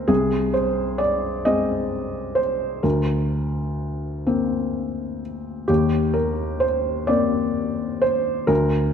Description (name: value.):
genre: neoclassical minimalist piano.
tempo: 42 BPM (dotted quarters).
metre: 6/8.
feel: rubato.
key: unclear.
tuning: A4 = 439 Hz.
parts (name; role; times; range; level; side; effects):
felt-muted upright piano; solo; 0.0-8.9 s; C2 to Eb5; -20 LUFS; equal; none.
room: moderate scoring stage reverb, RT60 1.5 s.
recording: dark, warm production.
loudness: -20 LUFS.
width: side -7 dB against mid.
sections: 0.0-8.9 A section.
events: none.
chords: 0.1 Ab/C; 2.8 Bbadd9/D; 5.7 Eb5.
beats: | 0.09 1.45 | 2.84 4.27 | 5.68 7.10 | 8.50.